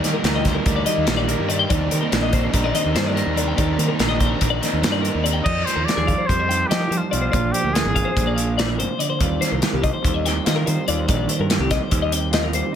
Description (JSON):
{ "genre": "math rock and midwest emo", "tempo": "288 BPM (eighths)", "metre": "9/8", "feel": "straight", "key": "Eb major", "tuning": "A4 = 440 Hz", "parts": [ { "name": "mellow electric guitar", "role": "accompaniment", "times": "0.0-12.8 s", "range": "Eb2 to G4", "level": "-27 LUFS", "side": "right 7 dB", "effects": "spring reverb" }, { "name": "twelve-string electric guitar", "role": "arpeggios", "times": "0.0-12.7 s", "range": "G4 to G5", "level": "-25 LUFS", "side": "left 7 dB", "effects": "digital delay" }, { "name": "overdriven electric guitar", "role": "riff", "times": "0.0-5.4 s", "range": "Eb2 to Eb4", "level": "-25 LUFS", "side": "equal", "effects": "none" }, { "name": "fuzz fingered electric bass", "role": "bass", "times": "0.0-12.6 s", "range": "Ab1 to F3", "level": "-24 LUFS", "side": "equal", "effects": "overdrive" }, { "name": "modern studio drum kit", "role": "drums", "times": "0.0-12.6 s", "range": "crash cymbal, hi-hat, kick drum, snare drum", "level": "-23 LUFS", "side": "equal", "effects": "none" }, { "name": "breathy trumpet", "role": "melody", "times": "5.4-8.6 s", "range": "F4 to Eb5", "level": "-24 LUFS", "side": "equal", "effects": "none" } ], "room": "light reverb", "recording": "none", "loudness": "-18 LUFS", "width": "side -9 dB against mid", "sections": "0.0-5.4 A section; 5.4-12.8 B section", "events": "none", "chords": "0.0 Cm9; 5.4 F7sus2; 7.3 Bb7; 9.2 Eb69" }